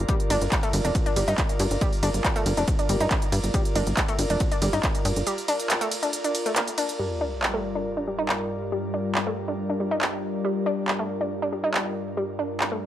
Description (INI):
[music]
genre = driving peak-time techno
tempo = 139 BPM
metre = 4/4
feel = straight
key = G minor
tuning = A4 = 440 Hz
[part]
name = tight sequencer bass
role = bass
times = 0.0-5.2 s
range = F1 to G2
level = -25 LUFS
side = equal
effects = tube saturation, sidechain pumping
[part]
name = airy breathy pad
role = texture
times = 0.0-12.9 s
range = G3 to D5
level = -31 LUFS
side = equal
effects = chorus, sidechain pumping
[part]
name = analog pluck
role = riff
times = 0.1-12.8 s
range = G3 to Eb4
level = -28 LUFS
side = equal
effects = chorus, overdrive, sidechain pumping, analog delay
[part]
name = electronic kick drum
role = drums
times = 0.1-4.9 s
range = none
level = -26 LUFS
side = equal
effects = none
[part]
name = techno drum kit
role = drums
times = 0.1-12.7 s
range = handclaps, hi-hat, ride cymbal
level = -28 LUFS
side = right 1 dB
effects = sidechain pumping on hats, sidechain pumping on cymbals
[part]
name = deep dark ambient pad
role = drone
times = 7.5-12.9 s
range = G2 to G3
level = -32 LUFS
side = left 2 dB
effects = chorus, built-in reverb, sidechain pumping
[part]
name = sub drop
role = sound effects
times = 7.0-8.7 s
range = none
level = -37 LUFS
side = equal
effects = none
[sound]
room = light reverb, digital ambience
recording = dry, gritty hardware recording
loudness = -23 LUFS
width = side -11 dB against mid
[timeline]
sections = 0.0-7.0 A section; 7.0-12.9 B section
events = drop 0.0-7.0; impact 7.0-8.7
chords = 0.0 Gm